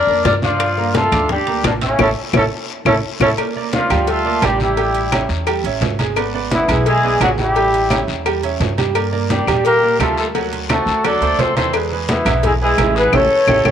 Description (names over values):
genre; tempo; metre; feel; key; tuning
latin, salsa; 172 BPM; 4/4; straight; unclear; A4 = 440 Hz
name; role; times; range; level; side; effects
mellow horn section; melody; 0.0-13.7 s; C#3 to D5; -17 LUFS; left 1 dB; none
bright upright piano; accompaniment; 0.0-13.7 s; E3 to E6; -22 LUFS; right 11 dB; none
upright bass; bass; 0.0-13.7 s; G#1 to Bb2; -22 LUFS; equal; none
bongos and cowbell; percussion; 0.1-13.7 s; none; -25 LUFS; left 12 dB; none
congas; percussion; 0.1-13.7 s; none; -23 LUFS; equal; none
guiro; percussion; 0.3-13.7 s; none; -30 LUFS; left 11 dB; none
timbales and agogo bells; percussion; 0.3-13.7 s; none; -26 LUFS; right 10 dB; none
claves; percussion; 0.6-13.7 s; none; -24 LUFS; left 11 dB; none
room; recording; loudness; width
light reverb, small room reverb; 1960s-style stereo with parts hard left and right; -14 LUFS; side -9 dB against mid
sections
0.0-3.4 A section; 3.4-13.7 B section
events
band accent 2.0-3.4, 13.1-13.7; drum fill 13.1-13.7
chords
0.0 Bb; 0.6 Gm7; 2.0 A; 3.4 Gm9; 4.8 A7; 6.2 E7/G#; 7.6 A7; 9.0 Gm; 10.3 D7; 11.7 E; 13.1 A7